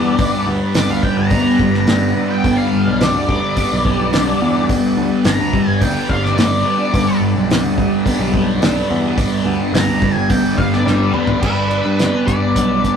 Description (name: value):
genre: psychedelic rock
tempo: 107 BPM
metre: 4/4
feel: straight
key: G major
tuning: A4 = 440 Hz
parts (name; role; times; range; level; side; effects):
- octave-fuzz lead guitar; melody; 0.0-13.0 s; G4 to Bb5; -22 LUFS; left 2 dB; wah, distortion, tape echo
- combo organ; sustained chords; 0.0-13.0 s; G3 to D5; -27 LUFS; right 3 dB; none
- thick fuzz guitar; riff; 0.0-13.0 s; G2 to D4; -17 LUFS; equal; distortion, phaser
- picked electric bass; bass; 0.0-12.8 s; G1 to G2; -21 LUFS; equal; none
- cloth-damped thuddy drum kit; drums; 0.2-13.0 s; crash cymbal, hi-hat, kick drum, snare drum, toms; -20 LUFS; equal; none
room: wet small room reverb, RT60 0.6 s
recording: rough rehearsal-room recording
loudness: -13 LUFS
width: side -7 dB against mid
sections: 0.0-11.4 A section; 11.4-13.0 B section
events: lead electric guitar solo 0.0-11.4; drum fill 10.9-11.4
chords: 0.0 G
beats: | 0.20 0.76 1.32 1.88 | 2.44 3.00 3.57 4.13 | 4.69 5.25 5.81 6.38 | 6.94 7.50 8.06 8.62 | 9.18 9.75 10.31 10.87 | 11.43 11.99 12.56